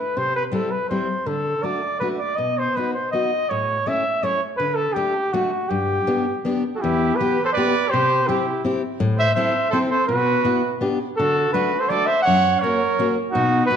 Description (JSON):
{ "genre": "alpine folk, alpine dance band", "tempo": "164 BPM", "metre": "3/4", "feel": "straight", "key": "G major, E minor from 6.8 s", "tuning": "A4 = 438 Hz", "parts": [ { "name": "mellow trumpet", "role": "melody", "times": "0.0-13.8 s", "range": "F#4 to F#5", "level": "-21 LUFS", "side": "right 1 dB", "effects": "none" }, { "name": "picked steel-string acoustic guitar", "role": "accompaniment", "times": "0.2-13.8 s", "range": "E2 to A4", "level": "-23 LUFS", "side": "left 2 dB", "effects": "none" }, { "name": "clear trumpet", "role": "second line", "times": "6.8-13.8 s", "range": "D#4 to C#5", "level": "-26 LUFS", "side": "right 5 dB", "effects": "none" } ], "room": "wet recital hall reverb, RT60 1.5 s", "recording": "dark, warm production", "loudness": "-19 LUFS", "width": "side -8 dB against mid", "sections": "0.0-6.8 A section; 6.8-13.8 B section", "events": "none", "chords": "0.2 C; 1.3 D; 2.4 B; 3.5 A; 4.6 Dsus4; 5.3 D; 5.7 G; 6.8 Em; 7.9 C; 9.0 Am; 10.1 Bsus4; 10.8 G; 11.2 D; 12.3 F#" }